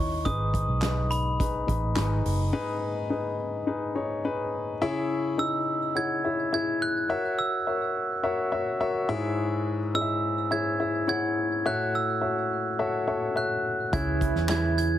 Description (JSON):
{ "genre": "piano-driven pop", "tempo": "105 BPM", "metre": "4/4", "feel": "straight", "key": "C# minor", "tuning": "A4 = 440 Hz", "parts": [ { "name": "glockenspiel with hard plastic mallets", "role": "melody", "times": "0.0-15.0 s", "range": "B5 to G#6", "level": "-30 LUFS", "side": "right 3 dB", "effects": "none" }, { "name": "warm grand piano", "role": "accompaniment", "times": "0.0-15.0 s", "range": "G#2 to F#5", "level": "-27 LUFS", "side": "left 3 dB", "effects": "none" }, { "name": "vintage muted fingered electric bass", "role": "bass", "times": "0.0-2.5, 13.9-15.0 s", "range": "F#1 to E2", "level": "-27 LUFS", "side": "right 1 dB", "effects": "none" }, { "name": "natural country drum kit", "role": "drums", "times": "0.3-2.4, 13.9-14.9 s", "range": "handclaps, hi-hat, kick drum, snare drum", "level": "-31 LUFS", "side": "right 1 dB", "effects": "none" }, { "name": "group handclap", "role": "percussion", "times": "0.8-2.1, 14.5-14.6 s", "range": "none", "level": "-44 LUFS", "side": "right 8 dB", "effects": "none" }, { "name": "mellow French horn section", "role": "second line", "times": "13.9-15.0 s", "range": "E3 to E4", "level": "-30 LUFS", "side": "right 11 dB", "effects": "none" } ], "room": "light reverb, small room ambience", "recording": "heavily compressed radio sound", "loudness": "-25 LUFS", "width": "side -11 dB against mid", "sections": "0.0-4.8 A section; 4.8-15.0 B section", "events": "break 2.5-4.8", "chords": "0.3 G#m; 4.8 C#m; 7.1 F#7; 9.1 C#m/G#; 11.7 A6; 13.9 C#m" }